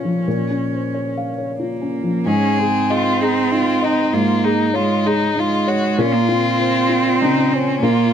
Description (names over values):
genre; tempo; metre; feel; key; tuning
neoclassical piano and strings; 88-99 BPM; 3/4; rubato; unclear; A4 = 440 Hz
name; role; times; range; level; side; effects
rich cello; second line; 0.0-8.1 s; Ab3 to Db4; -20 LUFS; right 5 dB; none
felt-muted upright piano; accompaniment; 0.0-8.1 s; Ab2 to F5; -19 LUFS; left 1 dB; none
rich violin; melody; 2.3-8.1 s; Db4 to Ab4; -20 LUFS; left 4 dB; none
room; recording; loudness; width
moderate studio reverb, RT60 0.8 s; none; -15 LUFS; side -8 dB against mid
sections
0.0-2.3 A section; 2.3-8.1 B section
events
none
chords
0.0 Bbmadd9; 2.3 Absus4; 6.0 Bbmadd9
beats
| 0.26 0.94 1.60 | 2.26 2.90 3.52 | 4.13 4.75 5.36 | 5.98 6.59 7.20 | 7.80